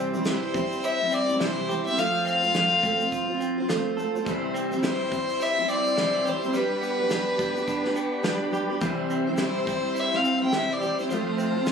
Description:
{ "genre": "acoustic pop", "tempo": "105 BPM", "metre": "4/4", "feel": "swing 60% on 16ths", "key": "C major", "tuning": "A4 = 440 Hz", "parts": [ { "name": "fingerpicked steel-string acoustic guitar", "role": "accompaniment", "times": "0.0-11.7 s", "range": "C3 to C5", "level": "-27 LUFS", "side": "equal", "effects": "double-tracked left and right" }, { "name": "direct-recorded clean electric guitar", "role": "arpeggios", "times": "0.0-11.7 s", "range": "F3 to A4", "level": "-32 LUFS", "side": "right 5 dB", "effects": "none" }, { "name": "natural country drum kit", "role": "drums", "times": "0.1-11.7 s", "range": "kick drum, shaker, snare drum", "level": "-33 LUFS", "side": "equal", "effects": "none" }, { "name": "warm violin", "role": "melody", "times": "0.3-11.7 s", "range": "B4 to G5", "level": "-25 LUFS", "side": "left 2 dB", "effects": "none" }, { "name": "tonewheel organ", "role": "sustained chords", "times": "4.2-11.7 s", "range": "G3 to C5", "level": "-36 LUFS", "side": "left 2 dB", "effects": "fast rotary speaker" } ], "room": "light reverb", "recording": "recorded on a phone in the room, club reverb", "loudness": "-23 LUFS", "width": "side -6 dB against mid", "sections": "0.0-11.7 A section", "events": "none", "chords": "0.0 C; 2.0 F; 4.3 C; 6.5 G; 8.8 C; 11.1 F", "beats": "0.26 0.83 1.40 | 1.97 2.54 3.11 3.69 | 4.25 4.83 5.40 5.97 | 6.54 7.11 7.68 8.25 | 8.82 9.39 9.96 10.53 | 11.10 11.67" }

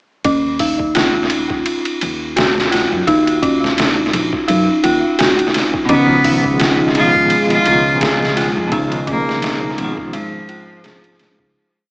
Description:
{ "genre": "trip hop", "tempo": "85 BPM", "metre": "4/4", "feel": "swing 56% on 16ths", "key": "Eb minor", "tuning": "A4 = 440 Hz", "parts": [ { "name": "dark detuned synth bell", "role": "arpeggios", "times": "0.2-11.6 s", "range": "Db4 to Ab4", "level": "-16 LUFS", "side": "equal", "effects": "chorus, tape echo" }, { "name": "upright bass", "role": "bass", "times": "0.2-11.5 s", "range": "Ab1 to Gb2", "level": "-23 LUFS", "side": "equal", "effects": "none" }, { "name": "trip hop sampler-style drum kit", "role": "drums", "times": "0.2-11.5 s", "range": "hi-hat, kick drum, ride cymbal, snare drum", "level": "-19 LUFS", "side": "equal", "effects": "vintage 12-bit sampler grit, studio reverb, tape echo" }, { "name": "bright cello", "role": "melody", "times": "5.9-11.4 s", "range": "F3 to F4", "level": "-17 LUFS", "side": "equal", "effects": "tape echo" }, { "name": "clean electric guitar", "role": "accompaniment", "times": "5.9-10.5 s", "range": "Cb3 to F3", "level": "-21 LUFS", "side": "equal", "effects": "tremolo, tape echo" }, { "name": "warbly tape-like pad", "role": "sustained chords", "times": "6.4-11.6 s", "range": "Ab3 to Ab4", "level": "-23 LUFS", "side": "equal", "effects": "chorus, built-in reverb" } ], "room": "moderate spring reverb, RT60 2.3 s", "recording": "echo-heavy mix, vinyl crackle, small speaker sound", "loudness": "-12 LUFS", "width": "side -32 dB against mid", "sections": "0.2-11.5 groove", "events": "fade-out 7.8-11.5", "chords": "0.2 Ebm9; 5.9 Db9", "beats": "| 0.25 0.95 1.66 2.36 | 3.07 3.78 4.48 5.19 | 5.89 6.60 7.30 8.01 | 8.72 9.42 10.13 10.83" }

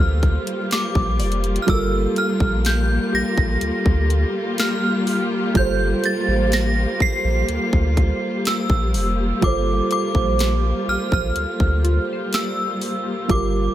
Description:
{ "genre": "contemporary R&B", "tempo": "62 BPM", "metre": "4/4", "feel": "straight", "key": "G minor", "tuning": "A4 = 440 Hz", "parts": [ { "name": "synth chime", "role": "melody", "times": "0.0-13.7 s", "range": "D6 to C7", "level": "-25 LUFS", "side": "equal", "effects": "ensemble chorus, ping-pong delay" }, { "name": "felt-muted upright piano", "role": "accompaniment", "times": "0.0-13.7 s", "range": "G3 to C5", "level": "-25 LUFS", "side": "right 4 dB", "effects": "none" }, { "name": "warm studio string section", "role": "sustained chords", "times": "0.0-13.7 s", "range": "G3 to G4", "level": "-25 LUFS", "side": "left 2 dB", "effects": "sidechain pumping" }, { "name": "warm sub bass", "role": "bass", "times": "0.0-13.7 s", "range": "F1 to D2", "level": "-21 LUFS", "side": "equal", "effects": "none" }, { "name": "trap drum kit", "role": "drums", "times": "0.2-13.5 s", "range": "hi-hat, kick drum, snare drum", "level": "-22 LUFS", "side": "equal", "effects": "none" }, { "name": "glassy wavetable pluck", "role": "texture", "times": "1.2-4.9, 11.8-13.7 s", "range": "F4 to D5", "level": "-33 LUFS", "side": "left 3 dB", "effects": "chorus, ping-pong delay" } ], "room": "little or no reverb", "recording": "none", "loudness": "-18 LUFS", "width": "side -12 dB against mid", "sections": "0.0-13.7 A section", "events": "none", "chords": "0.0 Gm9", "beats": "0.71 | 1.68 2.65 3.62 4.58 | 5.55 6.52 7.49 8.46 | 9.42 10.39 11.36 12.33 | 13.29" }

